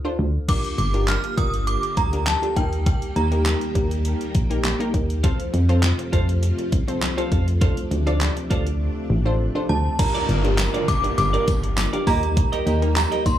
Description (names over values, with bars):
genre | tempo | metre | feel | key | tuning
dance-pop | 101 BPM | 4/4 | straight | G minor | A4 = 440 Hz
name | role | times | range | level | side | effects
glassy wavetable pluck | accompaniment | 0.0-13.2 s | Bb3 to D5 | -28 LUFS | left 1 dB | chorus, sidechain pumping, slapback echo
solid FM bass | bass | 0.2-13.4 s | G1 to F2 | -22 LUFS | equal | sidechain pumping
synth chime | melody | 0.5-4.0, 9.7-13.4 s | G5 to F6 | -26 LUFS | right 1 dB | ensemble chorus, phaser, tape echo, slapback echo
string machine, violins | sustained chords | 0.5-13.4 s | C3 to G4 | -30 LUFS | equal | ensemble chorus, sidechain pumping
pop drum kit | drums | 0.5-13.4 s | crash cymbal, handclaps, hi-hat, kick drum, snare drum | -23 LUFS | equal | overdrive
twelve-string electric guitar | riff | 5.2-13.3 s | F4 to Eb5 | -30 LUFS | right 4 dB | wide subtle chorus, slapback echo
downlifter | sound effects | 10.0-13.4 s | none | -32 LUFS | right 1 dB | slapback echo
tambourine | percussion | 10.3-13.4 s | none | -39 LUFS | left 5 dB | none
room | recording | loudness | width
light reverb | live gig heard through the venue's PA, club ambience | -19 LUFS | side -11 dB against mid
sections
0.5-10.0 A section; 10.0-13.4 B section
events
break 0.0-0.5; drums muted 8.8-10.0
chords
0.5 Gm7; 2.6 Eb; 5.2 F; 7.6 Dm7; 10.0 Gm7; 12.1 Eb